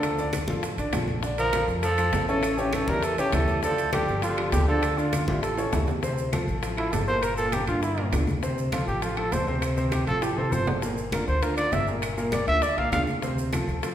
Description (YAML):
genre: Afro-Cuban jazz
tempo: 200 BPM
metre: 4/4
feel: straight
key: D minor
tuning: A4 = 440 Hz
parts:
  - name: breathy trumpet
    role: melody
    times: 0.0-13.0 s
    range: E4 to F5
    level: -27 LUFS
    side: right 1 dB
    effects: none
  - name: breathy tenor saxophone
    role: second line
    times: 0.0-5.8 s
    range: D3 to G3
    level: -34 LUFS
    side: right 2 dB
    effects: none
  - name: warm concert grand piano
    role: accompaniment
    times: 0.0-13.9 s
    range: Bb2 to D5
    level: -29 LUFS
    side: equal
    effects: none
  - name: upright bass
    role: bass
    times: 0.0-13.9 s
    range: G1 to G2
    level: -30 LUFS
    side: equal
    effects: none
  - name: bongos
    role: percussion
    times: 0.0-13.9 s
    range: none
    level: -38 LUFS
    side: left 5 dB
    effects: none
  - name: claves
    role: percussion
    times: 0.0-13.7 s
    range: none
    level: -42 LUFS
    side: left 5 dB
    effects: none
  - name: congas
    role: percussion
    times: 0.0-13.9 s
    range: none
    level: -33 LUFS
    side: left 1 dB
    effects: none
  - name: maracas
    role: percussion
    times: 0.0-13.9 s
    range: none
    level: -43 LUFS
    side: right 5 dB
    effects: none
  - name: timbales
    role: percussion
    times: 0.0-13.9 s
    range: none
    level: -35 LUFS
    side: right 4 dB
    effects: none
room: wet recital hall reverb, RT60 1.4 s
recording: recorded in a church or concert hall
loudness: -23 LUFS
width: side -10 dB against mid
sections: 0.0-6.0 A section; 6.0-13.9 B section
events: drum fill 5.6-6.0, 10.2-10.8; trumpet solo 6.0-13.9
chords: 0.0 Dm; 1.2 Bbmaj7; 2.4 A7; 3.6 Dm; 4.2 G5; 4.8 Dm; 5.4 A7; 6.0 Dm7; 7.2 Gm7; 8.4 Dm7; 10.8 Gm7; 13.2 Dm7